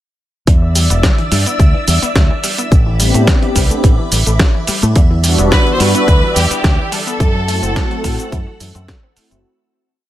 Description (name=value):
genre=nu-disco, nu disco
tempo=107 BPM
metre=4/4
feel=straight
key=E minor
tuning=A4 = 440 Hz
part: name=string machine, full ensemble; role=sustained chords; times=0.5-9.4 s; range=A4 to E6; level=-23 LUFS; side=equal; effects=ensemble chorus, sidechain pumping
part: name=wide unison pluck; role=arpeggios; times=0.5-9.4 s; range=D3 to A4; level=-25 LUFS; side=left 3 dB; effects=sidechain pumping, tape echo
part: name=fingered electric bass with an envelope filter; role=bass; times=0.5-9.4 s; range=E1 to A2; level=-15 LUFS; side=equal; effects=tube saturation
part: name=dusty soul sampler-style drum kit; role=drums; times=0.5-9.4 s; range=cabasa, hi-hat, snare drum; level=-18 LUFS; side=equal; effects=none
part: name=electronic kick drum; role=drums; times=0.5-9.0 s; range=none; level=-12 LUFS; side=equal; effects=none
part: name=warm analog pad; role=accompaniment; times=3.0-9.4 s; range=G3 to G4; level=-19 LUFS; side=equal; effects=chorus, sidechain pumping
part: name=clear studio violin section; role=melody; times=5.5-8.6 s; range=G4 to C5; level=-18 LUFS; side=equal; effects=tape echo
room=little or no reverb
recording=none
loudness=-11 LUFS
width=side -13 dB against mid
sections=0.5-9.4 groove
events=fade-out 6.5-9.4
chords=0.5 Em7; 2.7 Am11; 5.0 Em7; 7.2 F#m7b5